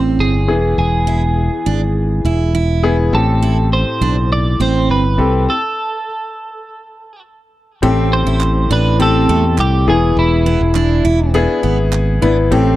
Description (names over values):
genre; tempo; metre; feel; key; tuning
piano-driven pop; 102 BPM; 4/4; straight; A minor; A4 = 440 Hz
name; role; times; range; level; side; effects
clear concert grand piano; accompaniment; 0.0-12.8 s; A2 to B4; -17 LUFS; left 4 dB; none
picked steel-string acoustic guitar; riff; 0.0-12.8 s; A3 to E4; -22 LUFS; right 7 dB; none
modern bright fingered electric bass; bass; 0.0-12.8 s; E1 to E2; -15 LUFS; equal; none
twelve-string electric guitar; melody; 0.2-11.3 s; E4 to D5; -20 LUFS; right 2 dB; none
group handclap; percussion; 8.4-12.1 s; none; -25 LUFS; right 10 dB; none
room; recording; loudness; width
little or no reverb; dry, close 1970s-style studio recording; -12 LUFS; side -15 dB against mid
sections
0.0-7.8 A section; 7.8-12.8 B section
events
stop 5.5-7.8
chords
0.5 E; 3.1 Am7; 5.5 N.C.; 7.8 Am7; 9.9 E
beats
0.19 | 0.78 1.37 1.96 2.54 | 3.13 3.72 4.31 4.89 | 5.48 6.07 6.65 7.24 | 7.83 8.41 9.00 9.59 | 10.17 10.76 11.34 11.93 | 12.52